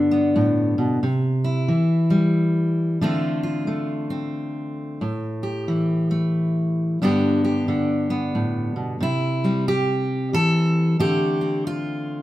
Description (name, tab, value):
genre	folk, solo fingerstyle acoustic guitar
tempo	90 BPM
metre	3/4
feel	swing 63% on 8ths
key	C major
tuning	A4 = 440 Hz
part	fingerpicked steel-string acoustic guitar	solo	0.0-12.2 s	G2 to A4	-19 LUFS	equal	none
room	moderate large studio reverb, RT60 1.3 s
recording	minimal, uncompressed stereo recording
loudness	-19 LUFS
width	side -15 dB against mid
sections	0.0-1.0 A section; 1.0-9.0 B section; 9.0-12.2 C section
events	none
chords	0.0 G; 1.0 C; 3.0 Dm7; 5.0 A5; 7.0 Gadd9; 9.0 C; 11.0 Dm7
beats	0.37 | 1.03 1.70 2.36 | 3.02 3.69 4.36 | 5.02 5.68 6.35 | 7.01 7.68 8.34 | 9.00 9.67 10.33 | 10.99 11.65